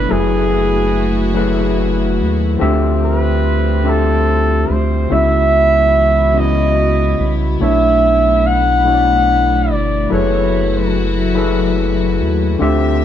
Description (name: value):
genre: slow six-eight R&B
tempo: 48 BPM (dotted quarters)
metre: 6/8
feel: straight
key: unclear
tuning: A4 = 438 Hz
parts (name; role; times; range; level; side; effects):
- warm flugelhorn; melody; 0.0-11.0 s; G#4 to F#5; -16 LUFS; right 1 dB; none
- overdriven tine electric piano; accompaniment; 0.0-13.0 s; B2 to E5; -17 LUFS; left 3 dB; none
- dark studio string section; sustained chords; 0.0-13.0 s; D3 to E5; -24 LUFS; right 1 dB; none
- rubbery square bass; bass; 0.0-13.0 s; F#1 to D#2; -17 LUFS; right 1 dB; none
room: moderate studio reverb, RT60 0.6 s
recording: band playing live in one room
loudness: -12 LUFS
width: side -10 dB against mid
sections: 0.0-13.0 A section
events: none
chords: 0.1 F#m11; 2.6 Dm11; 5.1 C#m11; 7.6 Bm11; 10.1 F#m11